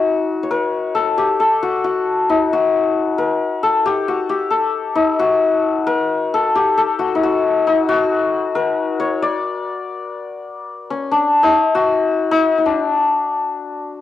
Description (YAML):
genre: persian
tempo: 90 BPM (dotted quarters)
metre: 6/8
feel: straight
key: unclear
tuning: A4 = 440 Hz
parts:
  - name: santur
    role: solo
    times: 0.0-14.0 s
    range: C#4 to D5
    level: -15 LUFS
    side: left 3 dB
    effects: cassette tape
room: moderate small room ambience, RT60 0.5 s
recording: home recording on cassette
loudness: -15 LUFS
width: side -12 dB against mid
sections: 0.0-10.5 A section; 10.5-14.0 B section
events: none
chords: none